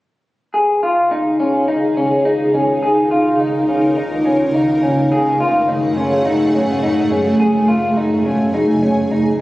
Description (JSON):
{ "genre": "dream pop", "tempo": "105 BPM", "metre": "4/4", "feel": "straight", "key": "Db major", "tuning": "A4 = 440 Hz", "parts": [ { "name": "granular cloud pad", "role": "sustained chords", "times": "1.2-9.4 s", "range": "Db2 to Ab5", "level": "-16 LUFS", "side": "equal", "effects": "built-in reverb, phaser" }, { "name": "electric guitar through a small old amp", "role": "arpeggios", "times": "0.5-9.4 s", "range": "Db4 to Ab4", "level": "-16 LUFS", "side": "left 1 dB", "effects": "lush chorus, digital delay" } ], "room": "moderate lush hall reverb, RT60 2.2 s", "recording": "recorded on a phone in the room, club reverb", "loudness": "-13 LUFS", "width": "side -17 dB against mid", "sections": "0.5-9.4 A section", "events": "none", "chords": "0.5 Dbadd9; 5.1 Gbmadd9" }